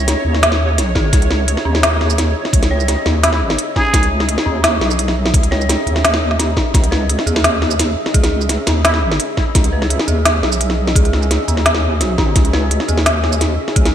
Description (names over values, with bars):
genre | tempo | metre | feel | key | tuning
half-time drum and bass | 171 BPM | 4/4 | half-time | C# minor | A4 = 440 Hz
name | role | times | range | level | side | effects
dark analog pad | sustained chords | 0.0-13.9 s | C#4 to E5 | -24 LUFS | equal | chorus, sidechain pumping
dark detuned synth bell | arpeggios | 0.0-13.9 s | C#4 to C#5 | -25 LUFS | right 1 dB | chorus, digital delay
deep soft wobble bass | bass | 0.0-13.9 s | G#1 to D#2 | -17 LUFS | equal | chorus
organic electronic drum kit | drums | 0.0-13.9 s | hi-hat, shaker, snare drum | -17 LUFS | equal | gated reverb
pulsing gated texture | texture | 0.0-6.7 s | C#5 | -28 LUFS | right 2 dB | chorus, built-in reverb
electronic kick drum | drums | 1.0-13.8 s | none | -14 LUFS | equal | overdrive
trumpet with plunger mute | melody | 3.2-4.1, 8.8-9.0 s | E4 to G#4 | -23 LUFS | equal | vintage 12-bit sampler grit, ping-pong delay
room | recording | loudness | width
light reverb, digital ambience | bright 1980s-style digital production | -13 LUFS | side -10 dB against mid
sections
0.0-6.7 A section; 6.7-13.9 A section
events
drop 0.0-6.7, 6.7-13.9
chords
0.0 C#m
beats
0.08 0.43 0.78 | 1.13 1.48 1.83 2.18 | 2.53 2.88 3.23 3.59 | 3.94 4.29 4.64 4.99 | 5.34 5.69 6.04 6.39 | 6.74 7.09 7.45 7.80 | 8.15 8.50 8.85 9.20 | 9.55 9.90 10.25 10.60 | 10.96 11.30 11.66 12.01 | 12.36 12.71 13.06 13.41 | 13.76